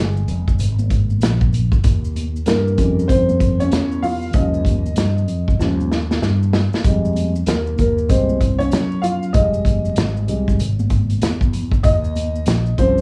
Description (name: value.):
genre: hip hop, jazz-hop.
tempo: 96 BPM.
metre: 4/4.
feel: swing 63% on 16ths.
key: F minor.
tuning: A4 = 440 Hz.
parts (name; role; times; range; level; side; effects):
dark grand piano; accompaniment; 0.0-13.0 s; Eb3 to F5; -23 LUFS; equal; none.
fretless electric bass; bass; 0.0-13.0 s; F1 to G2; -22 LUFS; equal; none.
maracas and congas; percussion; 0.2-13.0 s; none; -34 LUFS; equal; none.
vintage drum kit; drums; 0.3-13.0 s; hi-hat, kick drum, snare drum; -21 LUFS; equal; none.
room: little or no reverb.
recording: vinyl crackle, small room ambience.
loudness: -18 LUFS.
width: mono.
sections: 0.0-13.0 A section.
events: grand piano solo 0.0-13.0; drum fill 5.6-6.8.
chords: 0.0 Fm; 1.8 Eb9; 6.8 Fm7; 11.8 Eb9.